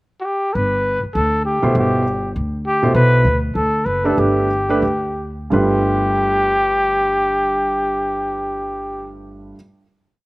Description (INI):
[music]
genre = modal jazz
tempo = 168-200 BPM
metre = 4/4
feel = swing 60% on 8ths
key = G mixolydian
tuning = A4 = 440 Hz
[part]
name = breathy trumpet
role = melody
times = 0.2-9.1 s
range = F#4 to B4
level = -18 LUFS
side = equal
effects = slapback echo
[part]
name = upright bass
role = bass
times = 0.6-9.5 s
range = F#1 to D2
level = -22 LUFS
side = equal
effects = none
[part]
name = warm concert grand piano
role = accompaniment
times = 1.6-9.6 s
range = G2 to C5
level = -20 LUFS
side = right 1 dB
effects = none
[sound]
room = little or no reverb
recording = recorded outdoors, with no room sound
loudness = -15 LUFS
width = side -21 dB against mid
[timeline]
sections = 0.0-0.5 pickup bar; 0.5-5.5 A section; 5.5-8.4 final chord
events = slowing down 3.0-5.5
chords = 0.0 N.C.; 0.5 Gadd9; 5.5 G9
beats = 0.24 | 0.54 0.84 1.15 1.45 | 1.75 2.05 2.35 2.65 | 2.95 3.25 3.56 3.86 | 4.18 4.50 4.83 5.16 | 5.51 5.87 6.22 6.58 | 6.93 7.29 7.65 8.00